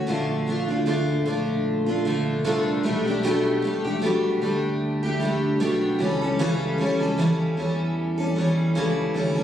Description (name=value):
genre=acoustic pop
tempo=76 BPM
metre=4/4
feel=swing 55% on 16ths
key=unclear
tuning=A4 = 440 Hz
part: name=picked steel-string acoustic guitar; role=accompaniment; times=0.0-9.4 s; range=Bb2 to A4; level=-22 LUFS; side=equal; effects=double-tracked left and right
part: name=modern bright fingered electric bass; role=bass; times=0.1-9.4 s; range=Bb1 to E2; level=-29 LUFS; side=equal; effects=none
room=moderate concert hall reverb, RT60 2.6 s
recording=recorded on a phone in the room, studio reverb, compression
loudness=-21 LUFS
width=side -10 dB against mid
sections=0.0-9.4 A section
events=none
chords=0.1 Bbmaj7; 2.8 Gadd9/B; 6.0 A7/C#